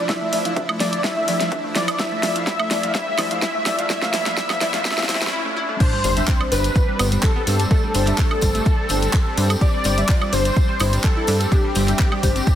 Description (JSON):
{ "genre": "progressive house", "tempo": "126 BPM", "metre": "4/4", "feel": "straight", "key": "unclear", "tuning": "A4 = 440 Hz", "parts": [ { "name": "wide unison lead", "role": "melody", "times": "0.0-12.6 s", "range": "G4 to E5", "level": "-24 LUFS", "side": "equal", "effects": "ensemble chorus, digital delay" }, { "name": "soft synth bell", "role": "second line", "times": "0.0-12.6 s", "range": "G4 to E5", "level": "-32 LUFS", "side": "equal", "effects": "none" }, { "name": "supersaw pad", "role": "sustained chords", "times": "0.0-12.6 s", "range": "F3 to E4", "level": "-30 LUFS", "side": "right 1 dB", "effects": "sidechain pumping" }, { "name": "plucky analog bass", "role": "bass", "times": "0.0-12.4 s", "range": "F1 to G2", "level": "-23 LUFS", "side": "equal", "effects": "tube saturation, sidechain pumping, high-pass filter" }, { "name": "riser and sub drop", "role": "sound effects", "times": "1.2-7.7 s", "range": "none", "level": "-33 LUFS", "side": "equal", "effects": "none" }, { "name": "analog pluck", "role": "arpeggios", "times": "0.1-12.6 s", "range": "G3 to G4", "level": "-30 LUFS", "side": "equal", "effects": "chorus, cassette tape, sidechain pumping, digital delay" }, { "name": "deep house drum kit", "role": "drums", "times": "0.1-12.6 s", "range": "crash cymbal, handclaps, hi-hat, snare drum, woodblock", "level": "-25 LUFS", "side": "equal", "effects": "sidechain pumping on hats, sidechain pumping on perc, sidechain pumping on cymbals" }, { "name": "electronic kick drum", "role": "drums", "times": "0.1-12.6 s", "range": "none", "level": "-19 LUFS", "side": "equal", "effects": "high-pass filter on kick, high-pass filter on room" }, { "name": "deep mellow chord stab", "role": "stabs", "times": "0.3-12.3 s", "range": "F3 to F5", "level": "-28 LUFS", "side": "left 1 dB", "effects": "chorus, sidechain pumping, digital delay" }, { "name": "tambourine", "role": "percussion", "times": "5.8-12.6 s", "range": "none", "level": "-33 LUFS", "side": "left 1 dB", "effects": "none" } ], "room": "light reverb", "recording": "dense, heavily limited modern master, high-pass filter", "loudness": "-17 LUFS", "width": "side -10 dB against mid", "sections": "0.0-5.8 A section; 5.8-12.6 B section", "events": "build-up 0.0-5.8; drum fill 0.0-5.3; filter sweep on synth pluck 0.0-5.8; filter sweep on analog synth lead 0.0-5.8; filter sweep 0.0-5.8; break 5.3-5.8; drop 5.8-12.6; impact 5.8-7.7", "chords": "0.0 Dmadd9/F; 5.8 Gsus4", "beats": "| 0.09 0.57 1.04 1.52 | 1.99 2.47 2.95 3.42 | 3.90 4.38 4.85 5.33 | 5.80 6.28 6.76 7.23 | 7.71 8.19 8.66 9.14 | 9.61 10.09 10.57 11.04 | 11.52 11.99 12.47" }